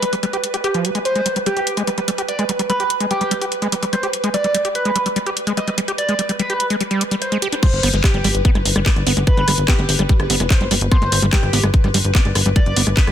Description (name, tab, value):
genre	psychedelic trance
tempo	146 BPM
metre	4/4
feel	straight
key	G major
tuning	A4 = 440 Hz
part	overdriven synth lead	melody	0.0-13.1 s	G4 to Eb5	-23 LUFS	right 1 dB	distortion, phaser, sidechain pumping, dub echo
part	pulsing gated texture	sustained chords	0.0-13.1 s	B4	-27 LUFS	right 1 dB	chorus, built-in reverb, sidechain pumping
part	overdriven acid bass	riff	0.0-13.1 s	F3 to G4	-22 LUFS	equal	distortion, auto-pan, sidechain pumping, dub echo
part	garage drum kit	drums	0.0-13.1 s	crash cymbal, handclaps, hi-hat, rim click	-22 LUFS	left 1 dB	none
part	electronic kick drum	drums	7.6-13.1 s	none	-15 LUFS	equal	none
part	plucky analog bass	bass	7.7-13.1 s	F1 to Ab1	-19 LUFS	equal	tube saturation
part	formant-sweep wobble bass	second line	9.1-10.4 s	G3 to B3	-31 LUFS	right 5 dB	none
room	light reverb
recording	dense, heavily limited modern master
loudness	-15 LUFS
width	side -10 dB against mid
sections	0.0-7.6 A section; 7.6-13.1 B section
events	filter sweep on acid bass 0.0-7.6; drop 7.6-13.1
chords	0.0 G5